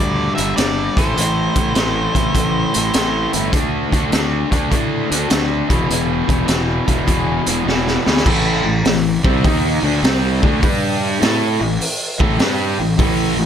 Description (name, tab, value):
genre	blues rock power trio and southern rock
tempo	102 BPM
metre	4/4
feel	swing 66% on 8ths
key	A minor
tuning	A4 = 440 Hz
part	octave-fuzz lead guitar	melody	0.0-3.3 s	C5 to E5	-23 LUFS	equal	distortion
part	overdriven electric guitar	riff	0.0-13.5 s	E2 to A4	-18 LUFS	equal	none
part	fuzz fingered electric bass	bass	0.0-13.5 s	E1 to A2	-22 LUFS	equal	overdrive
part	raw garage drum kit	drums	0.4-13.2 s	crash cymbal, hi-hat, kick drum, snare drum	-18 LUFS	equal	none
room	little or no reverb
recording	none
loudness	-14 LUFS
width	side -8 dB against mid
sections	0.0-8.3 A section; 8.3-13.5 B section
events	drum fill 7.7-8.3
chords	0.0 G5; 0.9 Am; 3.5 D5; 5.6 E5; 8.3 Am; 10.6 G5; 11.2 A5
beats	0.56 | 1.16 1.75 2.34 2.94 | 3.53 4.12 4.71 5.31 | 5.90 6.49 7.08 7.67 | 8.26 8.85 9.44 10.03 | 10.62 11.21 11.80 12.39 | 12.98